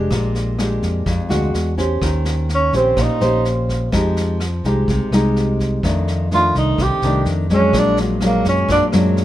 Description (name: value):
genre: bossa nova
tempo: 126 BPM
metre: 4/4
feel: straight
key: F minor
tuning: A4 = 440 Hz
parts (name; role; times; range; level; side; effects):
- nylon-string guitar; accompaniment; 0.0-9.2 s; F2 to C5; -19 LUFS; left 1 dB; none
- fingered electric bass; bass; 0.0-9.2 s; Bb1 to F#2; -20 LUFS; equal; none
- vintage brush drum kit; drums; 0.1-9.2 s; kick drum, rim click, snare drum; -26 LUFS; equal; none
- breathy tenor saxophone; melody; 2.5-3.5, 6.3-8.9 s; F#3 to G4; -18 LUFS; right 2 dB; none
room: little or no reverb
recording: minimal, uncompressed stereo recording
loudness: -15 LUFS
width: side -13 dB against mid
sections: 0.0-9.2 A section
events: tenor saxophone solo 0.0-9.2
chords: 0.1 Bb6; 1.5 E9; 2.0 Eb6; 3.9 Fm9; 5.8 F13; 7.3 F6; 7.7 Bb7b13